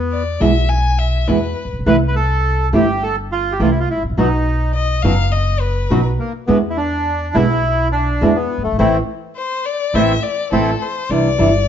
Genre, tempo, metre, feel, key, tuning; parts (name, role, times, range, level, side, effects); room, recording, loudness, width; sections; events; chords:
tango; 104 BPM; 4/4; rubato; A minor; A4 = 438 Hz
bandoneon; melody; 0.0-10.7 s; A3 to B4; -19 LUFS; equal
upright bass; bass; 0.0-11.7 s; F#1 to E2; -19 LUFS; equal
clear violin; second line; 0.1-11.7 s; A4 to G#5; -21 LUFS; left 6 dB
flamenco guitar; accompaniment; 0.4-11.5 s; B2 to F#4; -17 LUFS; right 2 dB
light reverb; nothing above 7.6 kHz; -14 LUFS; side -9 dB against mid
0.0-11.1 A section
band accent 8.8-11.1
0.0 E5; 1.9 C6; 4.2 B; 6.5 E7; 8.8 Am; 11.1 Cadd9